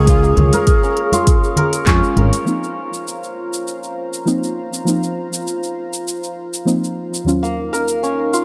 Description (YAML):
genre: organic downtempo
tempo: 100 BPM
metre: 4/4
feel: straight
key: unclear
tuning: A4 = 438 Hz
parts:
  - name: breathy low Native American-style wooden flute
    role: melody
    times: 0.0-1.9 s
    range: Ab4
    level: -23 LUFS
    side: equal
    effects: digital delay
  - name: deep mellow chord stab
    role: accompaniment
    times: 0.0-8.4 s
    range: Eb2 to F4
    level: -23 LUFS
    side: equal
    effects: chorus, sidechain pumping, digital delay
  - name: warm analog pad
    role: sustained chords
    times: 0.0-8.4 s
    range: Eb4 to Db6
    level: -28 LUFS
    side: equal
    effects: chorus, sidechain pumping
  - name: santur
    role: arpeggios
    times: 0.0-8.4 s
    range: Bb3 to Bb4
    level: -24 LUFS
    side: equal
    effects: digital delay
  - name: fretless electric bass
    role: bass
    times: 0.0-2.3 s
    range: Ab1 to F2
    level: -17 LUFS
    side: equal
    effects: sidechain pumping
  - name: afro-pop drum kit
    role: drums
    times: 0.1-8.4 s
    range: cabasa, handclaps, hi-hat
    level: -28 LUFS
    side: equal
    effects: none
  - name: electronic kick drum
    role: drums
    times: 0.1-2.0 s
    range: none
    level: -16 LUFS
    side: equal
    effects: none
  - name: bongos and congas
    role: percussion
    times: 0.4-2.3 s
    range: none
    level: -22 LUFS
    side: equal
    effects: none
room: light reverb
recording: dark, warm production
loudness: -18 LUFS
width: mono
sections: 0.0-2.5 A section; 2.5-8.4 B section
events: filter sweep on synth stab 2.5-8.4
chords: 0.0 Db; 2.5 F7sus4; 7.3 Ebm7